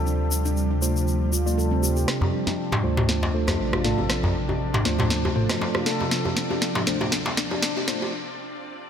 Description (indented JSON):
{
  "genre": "afro house",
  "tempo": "119 BPM",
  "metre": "4/4",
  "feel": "swing 55% on 16ths",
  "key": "D minor pentatonic",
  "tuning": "A4 = 444 Hz",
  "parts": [
    { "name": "ethereal airy pad", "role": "sustained chords", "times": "0.0-8.9 s", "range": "C3 to D4", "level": "-30 LUFS", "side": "equal", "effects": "ensemble chorus, built-in reverb" },
    { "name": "handpan", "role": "arpeggios", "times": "0.0-7.9 s", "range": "C4 to A4", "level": "-30 LUFS", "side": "left 2 dB", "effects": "low-pass filter, dub echo" },
    { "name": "warm sub bass", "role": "bass", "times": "0.0-8.1 s", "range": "A1 to D2", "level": "-26 LUFS", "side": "equal", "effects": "tube saturation" },
    { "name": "tube shaker", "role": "percussion", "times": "0.1-2.1 s", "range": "none", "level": "-30 LUFS", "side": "left 4 dB", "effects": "none" },
    { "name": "mellow tine electric piano", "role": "stabs", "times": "0.8-8.1 s", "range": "A3 to D5", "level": "-30 LUFS", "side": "right 1 dB", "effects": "medium stereo tremolo, low-pass filter, dub echo" },
    { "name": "afro-pop drum kit", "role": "drums", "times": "2.1-8.0 s", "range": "rim click, snare drum, toms", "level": "-26 LUFS", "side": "right 1 dB", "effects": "low-pass filter on snare, low-pass filter on toms" },
    { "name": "djembe", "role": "percussion", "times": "2.2-8.1 s", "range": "none", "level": "-28 LUFS", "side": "equal", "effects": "none" }
  ],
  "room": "light reverb, studio ambience",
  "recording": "high-pass filter",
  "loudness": "-21 LUFS",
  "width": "side -8 dB against mid",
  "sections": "0.0-2.1 A section; 2.1-8.9 B section",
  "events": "build-up 2.1-8.9; drum fill 2.1-8.1; filter sweep on handpan 2.1-8.9; filter sweep on tine electric piano 2.1-8.9; filter sweep 2.1-8.9; break 8.1-8.9",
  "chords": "0.0 Dm7"
}